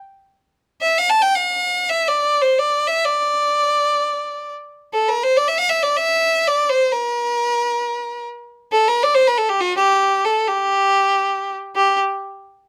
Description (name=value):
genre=Arabic maqam ensemble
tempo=free time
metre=none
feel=none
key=G maqam rast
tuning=A4 = 440 Hz
part: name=rich violin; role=solo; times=0.8-12.0 s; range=F#4-50c to A5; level=-18 LUFS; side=equal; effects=none
room=light reverb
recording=close, detailed microphones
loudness=-18 LUFS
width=mono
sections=0.0-11.8 A section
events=none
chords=none